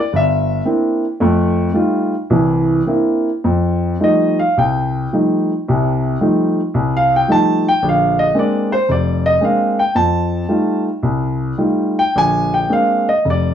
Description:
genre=solo jazz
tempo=110 BPM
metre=4/4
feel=swing 67% on 8ths, rubato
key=F mixolydian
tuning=A4 = 439 Hz
part: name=dark grand piano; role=solo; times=0.0-13.5 s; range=F1 to A5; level=-14 LUFS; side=equal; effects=none
room=wet studio reverb, RT60 0.5 s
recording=heard from further back in the room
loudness=-14 LUFS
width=side -9 dB against mid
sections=0.0-3.4 A section; 3.4-13.5 A section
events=grand piano solo 0.0-13.5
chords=0.0 C9; 1.2 F9; 2.3 C9; 3.4 F9; 7.8 Bb9; 10.0 F9; 12.2 Bb9

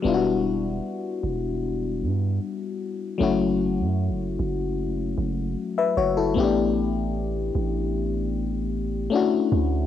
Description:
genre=R&B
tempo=76 BPM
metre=4/4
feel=straight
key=unclear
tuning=A4 = 440 Hz
part: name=FM electric piano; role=accompaniment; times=0.0-9.9 s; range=F#3 to E5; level=-24 LUFS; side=left 6 dB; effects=chorus, cassette tape
part: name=long sustained 808-style bass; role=bass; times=0.0-9.9 s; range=E1 to G2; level=-27 LUFS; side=right 2 dB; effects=none
room=light reverb, digital ambience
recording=home recording on cassette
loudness=-22 LUFS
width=side -10 dB against mid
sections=0.0-9.9 A section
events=none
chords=0.0 Em7; 3.2 F#m7; 6.4 A7sus4; 9.1 Dmaj7

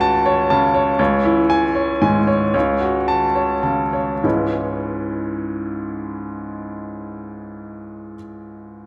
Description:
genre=classical, virtuoso piano study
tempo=97-122 BPM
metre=3/4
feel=rubato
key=C# minor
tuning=A4 = 441 Hz
part: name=clear baby grand piano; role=solo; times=0.0-8.9 s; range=C#2 to A5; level=-20 LUFS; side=equal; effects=none
room=wet recital hall reverb, RT60 1.6 s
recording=none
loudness=-19 LUFS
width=mono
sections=0.0-4.2 A section; 4.2-7.7 B section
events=slowing down 0.3-4.2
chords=0.0 F#m/C#; 1.0 C#m; 2.5 F#m/C#; 4.2 C#m

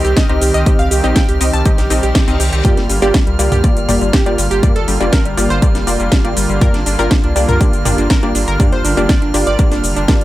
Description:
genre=progressive house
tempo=121 BPM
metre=4/4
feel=straight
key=G minor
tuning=A4 = 441 Hz
part: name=warm analog pad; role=sustained chords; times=0.0-10.2 s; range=D3 to G4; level=-23 LUFS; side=right 2 dB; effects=chorus, tremolo, sidechain pumping
part: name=analog pluck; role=arpeggios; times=0.0-10.2 s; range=G3 to A5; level=-20 LUFS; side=right 1 dB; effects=chorus, cassette tape, sidechain pumping, dub echo
part: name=wide unison pluck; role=stabs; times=0.0-10.2 s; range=Bb3 to Eb5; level=-20 LUFS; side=left 1 dB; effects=sidechain pumping, dub echo
part: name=saturated sub bass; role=bass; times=0.0-10.2 s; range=F1 to C2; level=-18 LUFS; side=equal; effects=sidechain pumping
part: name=house drum kit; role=drums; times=0.0-10.2 s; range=hi-hat, shaker, snare drum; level=-20 LUFS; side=right 1 dB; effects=sidechain pumping on hats, sidechain pumping on perc
part: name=drifting glass-harmonics texture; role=texture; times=0.0-10.2 s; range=F6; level=-29 LUFS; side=right 2 dB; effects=chorus, built-in reverb, sidechain pumping
part: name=electronic kick drum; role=drums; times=0.2-10.2 s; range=none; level=-13 LUFS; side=equal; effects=none
part: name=reverse cymbal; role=sound effects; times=1.9-2.6 s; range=none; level=-28 LUFS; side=left 5 dB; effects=none
part: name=electronic toms and congas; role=percussion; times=2.6-9.1 s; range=none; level=-22 LUFS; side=left 1 dB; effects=sidechain pumping on toms, sidechain pumping on perc
room=little or no reverb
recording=none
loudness=-11 LUFS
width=side -15 dB against mid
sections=0.0-10.2 A section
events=reverse cymbal 1.9-2.6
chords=0.0 Cm; 2.6 Gm7

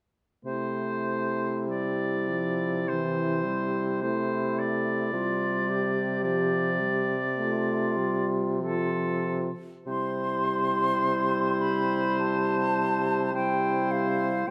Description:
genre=classical, slow romantic movement for wind quintet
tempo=51 BPM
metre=4/4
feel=uneven beats, rubato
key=C major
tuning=A4 = 440 Hz
part: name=mellow French horn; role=accompaniment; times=0.4-14.5 s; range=E3 to A3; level=-35 LUFS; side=equal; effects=none
part: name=clear oboe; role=second line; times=0.5-14.5 s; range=A4 to D5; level=-34 LUFS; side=equal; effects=none
part: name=dark clarinet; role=accompaniment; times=0.5-14.5 s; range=E4 to G4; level=-35 LUFS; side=equal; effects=none
part: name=mellow bassoon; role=bass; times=0.5-14.5 s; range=C3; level=-32 LUFS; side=equal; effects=none
part: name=bright silver concert flute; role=melody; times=9.9-14.5 s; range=F5 to C6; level=-31 LUFS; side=equal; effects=none
room=moderate recital hall reverb, RT60 1.8 s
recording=none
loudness=-27 LUFS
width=mono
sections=0.5-9.9 A section; 9.9-14.5 B section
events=none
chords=0.5 C; 5.1 G5/C; 9.9 C

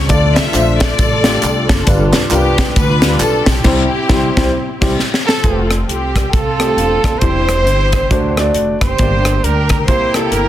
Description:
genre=uptempo gospel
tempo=135 BPM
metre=4/4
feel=swing 61% on 8ths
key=F major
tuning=A4 = 439 Hz
part: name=clear studio string section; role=melody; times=0.0-10.5 s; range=B3 to E5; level=-18 LUFS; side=left 2 dB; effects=none
part: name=upright bass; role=bass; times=0.0-10.5 s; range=Eb1 to D2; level=-18 LUFS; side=equal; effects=none
part: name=warm baby grand piano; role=accompaniment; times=0.1-10.5 s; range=G2 to D5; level=-18 LUFS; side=left 1 dB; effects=none
part: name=crisp fusion drum kit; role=drums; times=0.1-10.4 s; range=crash cymbal, hi-hat, kick drum, rim click, snare drum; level=-16 LUFS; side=equal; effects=none
part: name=tambourine and handclaps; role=percussion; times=0.1-3.6 s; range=none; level=-26 LUFS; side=right 7 dB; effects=none
part: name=warm trumpet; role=melody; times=5.3-10.5 s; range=G4 to C5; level=-19 LUFS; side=right 5 dB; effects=none
room=light reverb, studio ambience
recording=dense, heavily limited modern master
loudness=-11 LUFS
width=side -12 dB against mid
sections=0.0-5.4 A section; 5.4-10.5 B section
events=band accent 3.7-5.4; drum fill 5.0-5.4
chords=0.1 Dm; 1.9 G7; 3.7 C; 5.4 F; 7.2 C/E; 8.1 D7; 9.0 Gm; 9.9 C7

